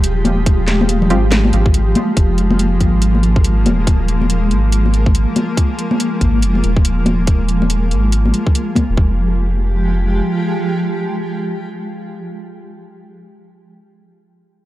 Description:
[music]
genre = deep dubstep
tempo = 141 BPM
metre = 4/4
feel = swing 60% on 16ths, half-time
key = F minor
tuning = A4 = 440 Hz
[part]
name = granular cloud pad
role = sustained chords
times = 0.0-12.3 s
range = F3 to G4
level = -19 LUFS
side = equal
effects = built-in reverb
[part]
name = soft dub sub bass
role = bass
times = 0.0-10.2 s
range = Eb1 to Ab1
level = -16 LUFS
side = equal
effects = none
[part]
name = garage drum kit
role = drums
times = 0.0-8.9 s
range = hi-hat, snare drum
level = -22 LUFS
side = equal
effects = none
[part]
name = congas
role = percussion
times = 0.2-8.9 s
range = none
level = -20 LUFS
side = left 2 dB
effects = dub echo
[part]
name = electronic kick drum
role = drums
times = 0.5-9.1 s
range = none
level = -14 LUFS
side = equal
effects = none
[part]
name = filtered dub chord stab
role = stabs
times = 1.1-1.2 s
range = Ab3 to G4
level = -24 LUFS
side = right 2 dB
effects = chorus, dub echo
[sound]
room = digital ambience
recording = dry, gritty hardware recording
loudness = -13 LUFS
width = side -15 dB against mid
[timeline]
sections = 0.0-9.0 A section; 9.0-12.4 B section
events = none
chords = 0.0 Fmadd9

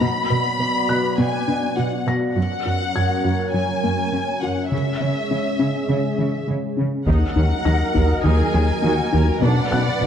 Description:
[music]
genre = cinematic, hybrid orchestral and electronic film score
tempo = 102 BPM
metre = 4/4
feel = straight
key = Eb phrygian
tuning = A4 = 440 Hz
[part]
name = warm symphonic violin section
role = melody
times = 0.0-10.1 s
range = Fb5 to B5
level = -25 LUFS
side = left 2 dB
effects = none
[part]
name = dark analog pad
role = sustained chords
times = 0.0-10.1 s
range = Gb3 to Eb5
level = -25 LUFS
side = equal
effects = chorus
[part]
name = analog pluck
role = arpeggios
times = 0.0-10.1 s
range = Db3 to B4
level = -27 LUFS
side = left 4 dB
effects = chorus, digital delay
[part]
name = warm symphonic cello section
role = bass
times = 0.0-10.1 s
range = Gb2 to Eb3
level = -25 LUFS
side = right 3 dB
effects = none
[part]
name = felt-muted upright piano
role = texture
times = 0.0-10.1 s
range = F#5 to Bb6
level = -33 LUFS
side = left 2 dB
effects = digital delay
[part]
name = warm symphonic viola section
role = accompaniment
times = 7.1-10.1 s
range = Bb3 to B4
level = -27 LUFS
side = right 2 dB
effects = none
[part]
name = round analog bass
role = riff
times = 7.1-10.1 s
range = Eb2 to Eb3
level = -20 LUFS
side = left 1 dB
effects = none
[part]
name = clear tuba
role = bass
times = 7.1-10.1 s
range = B1 to Eb2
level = -26 LUFS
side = right 3 dB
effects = none
[part]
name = taiko ensemble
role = drums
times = 7.1-8.2 s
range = none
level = -26 LUFS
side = right 1 dB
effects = none
[part]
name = rich symphonic violin section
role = second line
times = 8.2-10.1 s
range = Gb4 to D5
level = -27 LUFS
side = equal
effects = none
[sound]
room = wet scoring stage reverb, RT60 1.8 s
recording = dark, warm production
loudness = -18 LUFS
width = side -8 dB against mid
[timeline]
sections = 0.0-7.1 A section; 7.1-10.1 A section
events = none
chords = 0.0 Bm; 2.4 Gb; 4.7 Dbm; 7.1 Ebm; 9.4 Bm

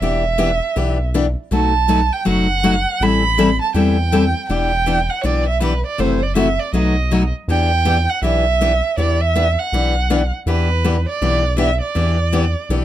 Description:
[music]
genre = acoustic string swing (jazz manouche)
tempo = 161 BPM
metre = 4/4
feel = swing 61% on 8ths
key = E minor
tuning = A4 = 441 Hz
[part]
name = warm violin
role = melody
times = 0.0-12.8 s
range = B4 to B5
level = -20 LUFS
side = right 4 dB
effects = none
[part]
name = picked steel-string acoustic guitar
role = accompaniment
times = 0.0-12.8 s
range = B2 to A4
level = -18 LUFS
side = left 4 dB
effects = none
[part]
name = round analog bass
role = bass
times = 0.0-12.8 s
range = E1 to E2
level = -19 LUFS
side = equal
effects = none
[sound]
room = little or no reverb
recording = close, detailed microphones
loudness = -15 LUFS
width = side -12 dB against mid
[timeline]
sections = 0.0-7.5 A section; 7.5-12.8 A section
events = none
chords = 0.0 Em7; 1.5 B7; 3.0 Am9; 4.5 Em7; 6.0 F#m7b5; 6.7 B7; 7.5 Em7

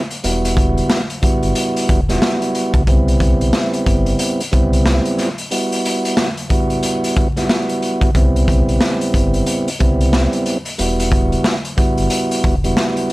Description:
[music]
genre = hip hop, boom-bap hip-hop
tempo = 91 BPM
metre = 4/4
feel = swing 61% on 16ths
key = E minor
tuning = A4 = 441 Hz
[part]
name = tonewheel organ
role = accompaniment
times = 0.0-13.1 s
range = G3 to F#4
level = -18 LUFS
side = right 1 dB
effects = stopped rotary speaker, cassette tape, high-pass filter, low-pass filter
[part]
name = raw garage drum kit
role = drums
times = 0.1-13.1 s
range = hi-hat, kick drum, snare drum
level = -17 LUFS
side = equal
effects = none
[part]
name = sub bass with octave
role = bass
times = 0.2-12.7 s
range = E1 to C#2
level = -18 LUFS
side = equal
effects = none
[sound]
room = light reverb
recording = vinyl crackle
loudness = -14 LUFS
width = side -20 dB against mid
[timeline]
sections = 0.0-13.1 A section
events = none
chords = 0.2 Emadd9; 2.9 Cmaj7; 5.5 Emadd9; 8.1 Cmaj7; 10.8 Emadd9

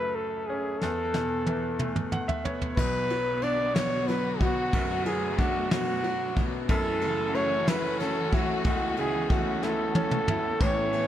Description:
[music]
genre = six-eight pop ballad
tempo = 61 BPM (dotted quarters)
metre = 6/8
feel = straight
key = unclear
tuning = A4 = 441 Hz
[part]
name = warm flugelhorn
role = melody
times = 0.0-11.1 s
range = F#4 to D5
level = -29 LUFS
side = equal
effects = ping-pong delay
[part]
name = bright grand piano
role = accompaniment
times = 0.0-11.1 s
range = F#1 to F#5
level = -31 LUFS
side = left 1 dB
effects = none
[part]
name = soft brush drum kit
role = drums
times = 0.8-11.1 s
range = crash cymbal, kick drum, ride cymbal, snare drum, splash cymbal, toms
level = -29 LUFS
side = equal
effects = none
[part]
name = warm studio string section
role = sustained chords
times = 2.8-11.1 s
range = D3 to A4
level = -34 LUFS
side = left 2 dB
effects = none
[part]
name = picked steel-string acoustic guitar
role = arpeggios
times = 2.8-11.1 s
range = E3 to D4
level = -36 LUFS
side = right 1 dB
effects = none
[sound]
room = light reverb, small room ambience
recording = none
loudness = -25 LUFS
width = side -11 dB against mid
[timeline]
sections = 0.0-2.8 A section; 2.8-11.1 B section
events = drum fill 0.8-2.8, 9.6-10.6; grand piano fill 1.8-2.8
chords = 0.0 F#m; 0.8 Esus4; 2.8 Bm; 6.7 F#m7

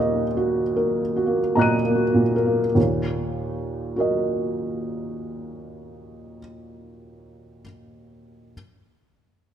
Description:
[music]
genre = neoclassical minimalist piano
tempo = 51 BPM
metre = 3/4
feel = rubato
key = Eb minor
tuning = A4 = 440 Hz
[part]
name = felt-muted upright piano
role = solo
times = 0.0-8.5 s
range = Eb2 to Eb7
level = -21 LUFS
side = right 1 dB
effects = none
[sound]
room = moderate concert hall reverb, RT60 1.8 s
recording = minimal, uncompressed stereo recording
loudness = -20 LUFS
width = side -9 dB against mid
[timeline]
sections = 0.0-2.8 A section; 2.8-6.3 B section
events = slowing down 0.0-2.8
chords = 0.0 Ebm

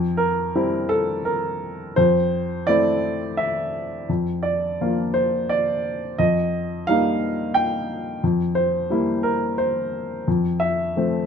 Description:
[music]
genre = neoclassical minimalist piano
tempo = 87 BPM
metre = 3/4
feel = rubato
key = F major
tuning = A4 = 440 Hz
[part]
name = warm baby grand piano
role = solo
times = 0.0-11.3 s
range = F2 to G5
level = -20 LUFS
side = equal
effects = none
[sound]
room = light reverb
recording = minimal, uncompressed stereo recording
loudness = -20 LUFS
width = side -7 dB against mid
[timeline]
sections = 0.0-11.3 A section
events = none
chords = 0.0 C7/F; 2.0 Fmaj7; 4.1 Bb/F; 6.2 Eb/F; 8.2 C7/F; 10.3 Fmaj7

